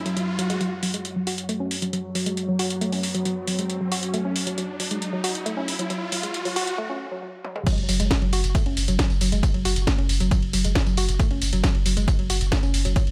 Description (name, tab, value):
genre	driving peak-time techno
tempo	136 BPM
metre	4/4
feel	straight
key	F# minor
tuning	A4 = 441 Hz
part	deep dark ambient pad	drone	0.0-6.8 s	F#3	-33 LUFS	equal	chorus, built-in reverb, sidechain pumping
part	riser	sound effects	0.0-6.8 s	none	-36 LUFS	equal	none
part	woody wave-folded pluck	riff	0.1-13.0 s	F#3 to F#4	-30 LUFS	equal	chorus, sidechain pumping, tape echo
part	techno drum kit	drums	0.1-13.1 s	crash cymbal, hi-hat, ride cymbal, snare drum, tambourine, toms	-30 LUFS	equal	none
part	electronic kick drum	drums	7.7-13.0 s	none	-25 LUFS	equal	none
part	saturated sub bass	bass	7.8-13.1 s	F#1	-26 LUFS	equal	overdrive, sidechain pumping, low-pass filter
room	light reverb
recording	high-pass filter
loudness	-24 LUFS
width	mono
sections	0.6-7.7 A section; 7.7-13.1 B section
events	riser 0.0-0.6, 0.6-6.8; build-up 0.6-7.7; filter sweep on synth arpeggio sound 0.6-7.7; break 6.8-7.7; drum fill 7.4; drop 7.7-13.1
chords	0.0 F#5